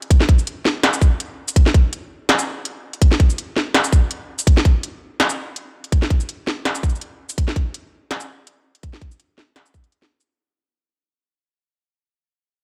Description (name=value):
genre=drum and bass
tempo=165 BPM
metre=4/4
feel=swing 54% on 16ths, half-time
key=none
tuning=none
part: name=industrial drum kit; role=drums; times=0.0-10.3 s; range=hi-hat, shaker, snare drum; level=-22 LUFS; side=equal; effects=studio reverb
part: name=electronic kick drum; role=drums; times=0.1-9.8 s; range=none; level=-16 LUFS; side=equal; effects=studio reverb
room=digital ambience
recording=none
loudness=-19 LUFS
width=mono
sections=0.0-10.3 A section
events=drop 0.0-10.3; fade-out 4.5-10.3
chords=none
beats=| 0.11 0.47 0.83 1.20 | 1.56 1.93 2.29 2.65 | 3.02 3.38 3.74 4.11 | 4.47 4.83 5.20 5.56 | 5.92 6.29 6.65 7.02 | 7.38 7.74 8.11 8.47 | 8.83 9.20 9.56 9.93